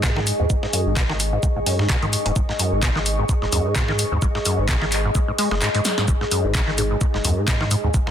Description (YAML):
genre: acid house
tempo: 129 BPM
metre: 4/4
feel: swing 55% on 16ths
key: unclear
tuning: A4 = 440 Hz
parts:
  - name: acid bass, saw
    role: riff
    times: 0.0-8.1 s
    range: F#2 to G#3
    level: -24 LUFS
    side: equal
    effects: overdrive, analog chorus, sidechain pumping, tape echo
  - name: saturated sub bass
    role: bass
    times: 0.0-8.0 s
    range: D#1 to G#2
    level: -25 LUFS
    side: equal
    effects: sidechain pumping
  - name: dusty soul sampler-style drum kit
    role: drums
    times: 0.0-8.1 s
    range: hi-hat, shaker, snare drum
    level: -30 LUFS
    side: right 1 dB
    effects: soft clipping on snare, high-pass filter on snare, sidechain pumping on perc, high-pass filter on perc, sidechain pumping on hats, high-pass filter on hats
  - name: electronic kick drum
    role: drums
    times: 0.0-8.0 s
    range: none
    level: -22 LUFS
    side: equal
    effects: overdrive
  - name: punchy analog drum machine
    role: drums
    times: 0.0-7.8 s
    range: handclaps, hi-hat, snare drum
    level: -25 LUFS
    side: left 1 dB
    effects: none
  - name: deep dark ambient pad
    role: texture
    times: 0.0-8.1 s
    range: G#4 to C#6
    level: -26 LUFS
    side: equal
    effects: chorus, built-in reverb, sidechain pumping
  - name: deep mellow chord stab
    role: stabs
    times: 6.4-7.0 s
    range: G#3 to G#4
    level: -31 LUFS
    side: left 2 dB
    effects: chorus, phaser, tape echo
room: light reverb, digital ambience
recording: dense, heavily limited modern master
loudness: -18 LUFS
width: side -9 dB against mid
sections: 0.0-8.1 A section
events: filter sweep on acid bass 0.0-8.1; drum fill 5.8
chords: 0.0 G#5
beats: 0.04 | 0.50 0.97 1.43 1.90 | 2.36 2.83 3.29 3.76 | 4.22 4.69 5.15 5.62 | 6.08 6.55 7.01 7.48 | 7.94